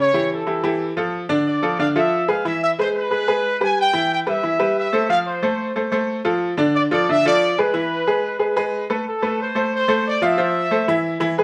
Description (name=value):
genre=latin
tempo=182 BPM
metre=4/4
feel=straight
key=A minor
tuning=A4 = 441 Hz
part: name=warm trumpet section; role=melody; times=0.0-11.2 s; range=A4 to G#5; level=-23 LUFS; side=equal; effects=none
part: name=bright upright piano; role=accompaniment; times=0.0-11.4 s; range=D3 to F5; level=-22 LUFS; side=equal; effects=none
room=moderate studio reverb, RT60 0.8 s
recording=none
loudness=-20 LUFS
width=mono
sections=0.0-9.1 A section; 9.1-11.4 B section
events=none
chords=0.0 A7; 1.1 Dm; 2.5 E; 3.8 Cmaj7 (rootless); 5.1 F; 6.4 Dm; 7.7 E; 9.1 Amadd9; 9.7 Fmaj7; 10.4 F